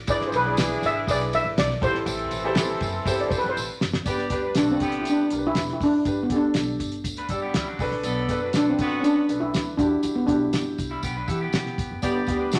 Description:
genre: uptempo 1960s-style soul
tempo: 121 BPM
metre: 4/4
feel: straight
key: G major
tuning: A4 = 440 Hz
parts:
  - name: upright bass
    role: bass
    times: 0.0-12.6 s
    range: E1 to E3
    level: -36 LUFS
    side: equal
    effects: none
  - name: steel pan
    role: melody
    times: 0.1-12.6 s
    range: B3 to E5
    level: -25 LUFS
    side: equal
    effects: none
  - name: warm horn section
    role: second line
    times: 0.1-12.6 s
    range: D3 to D5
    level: -32 LUFS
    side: equal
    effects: none
  - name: clear upright piano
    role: accompaniment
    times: 0.1-12.6 s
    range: B3 to F#5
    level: -32 LUFS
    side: equal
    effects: none
  - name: cloth-damped thuddy drum kit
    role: drums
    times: 0.1-12.6 s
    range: hi-hat, kick drum, ride cymbal, snare drum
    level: -30 LUFS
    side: equal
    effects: none
  - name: tambourine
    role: percussion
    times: 0.1-12.6 s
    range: none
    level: -41 LUFS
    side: equal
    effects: none
  - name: electric guitar through a small old amp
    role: riff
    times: 7.2-7.9, 10.9-12.0 s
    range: F#3 to B4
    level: -35 LUFS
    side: equal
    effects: spring reverb
room: moderate studio reverb, RT60 0.7 s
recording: none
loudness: -24 LUFS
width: mono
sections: 0.0-4.1 A section; 4.1-12.6 B section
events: drum fill 3.6-4.1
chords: 0.1 E7/G#; 1.8 Am7; 4.1 G; 7.8 Bm7; 9.8 Emadd9; 12.0 G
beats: | 0.08 0.58 1.08 1.57 | 2.07 2.56 3.06 3.56 | 4.06 4.55 5.05 5.55 | 6.05 6.55 7.05 7.55 | 8.04 8.54 9.04 9.54 | 10.04 10.53 11.03 11.53 | 12.02 12.52

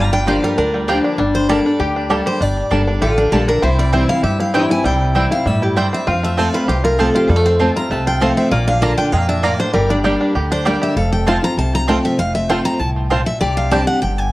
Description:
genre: bluegrass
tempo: 196 BPM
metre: 4/4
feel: straight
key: G dorian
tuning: A4 = 438 Hz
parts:
  - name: picked steel-string acoustic guitar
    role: melody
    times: 0.0-14.3 s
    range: D4 to Bb5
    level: -20 LUFS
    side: equal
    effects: none
  - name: lap resonator guitar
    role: second line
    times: 0.0-14.3 s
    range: D4 to A4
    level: -25 LUFS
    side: left 3 dB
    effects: tape echo
  - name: picked steel-string acoustic guitar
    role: accompaniment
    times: 0.0-14.3 s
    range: F2 to A4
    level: -20 LUFS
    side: left 1 dB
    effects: none
  - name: bluegrass banjo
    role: arpeggios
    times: 0.0-13.8 s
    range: D3 to G4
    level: -22 LUFS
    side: right 2 dB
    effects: none
  - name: upright bass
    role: bass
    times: 0.0-14.3 s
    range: F1 to G2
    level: -19 LUFS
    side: equal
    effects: none
  - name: mandolin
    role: stabs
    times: 0.3-13.8 s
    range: Bb3 to Bb5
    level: -24 LUFS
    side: right 3 dB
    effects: tape echo
room: moderate studio reverb, RT60 0.6 s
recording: vinyl crackle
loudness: -14 LUFS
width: side -18 dB against mid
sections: 0.0-1.2 A section; 1.2-11.0 B section; 11.0-14.3 B section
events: steel-string acoustic guitar solo 1.2-14.3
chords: 0.0 Gm7; 1.2 Gmadd9; 3.6 C; 6.1 F; 8.5 Bb; 9.7 Gm; 11.0 F; 13.4 Csus2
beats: 0.27 0.58 0.88 | 1.19 1.49 1.80 2.10 | 2.41 2.71 3.02 3.32 | 3.63 3.94 4.24 4.54 | 4.85 5.16 5.46 5.77 | 6.07 6.38 6.68 6.99 | 7.29 7.60 7.91 8.21 | 8.52 8.82 9.13 9.44 | 9.74 10.05 10.35 10.66 | 10.96 11.27 11.58 11.88 | 12.19 12.50 12.80 13.11 | 13.42 13.72 14.03

